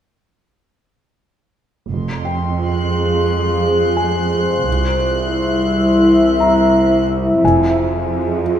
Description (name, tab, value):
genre	cinematic, suspense film score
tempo	87 BPM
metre	4/4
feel	straight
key	F harmonic minor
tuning	A4 = 440 Hz
part	deep dark ambient pad	sustained chords	2.6-8.6 s	E4 to E5	-15 LUFS	left 1 dB	chorus, built-in reverb
part	rich studio cello section	bass	1.9-8.6 s	C2 to F2	-20 LUFS	right 2 dB	none
part	rich studio double bass section	bass	1.9-8.1 s	F1 to C2	-22 LUFS	right 2 dB	none
part	rich studio violin section	texture	1.9-7.1 s	C6 to Gb6	-25 LUFS	left 3 dB	none
part	felt-muted upright piano	texture	2.2-8.6 s	G5 to Bb5	-25 LUFS	left 2 dB	none
room	wet recital hall reverb, RT60 1.5 s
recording	minimal, uncompressed stereo recording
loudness	-13 LUFS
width	side -9 dB against mid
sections	1.9-8.6 A section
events	none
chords	1.9 Fm; 4.7 C; 7.4 Fm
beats	| 1.91 2.60 3.29 3.98 | 4.67 5.36 6.05 6.74 | 7.43 8.12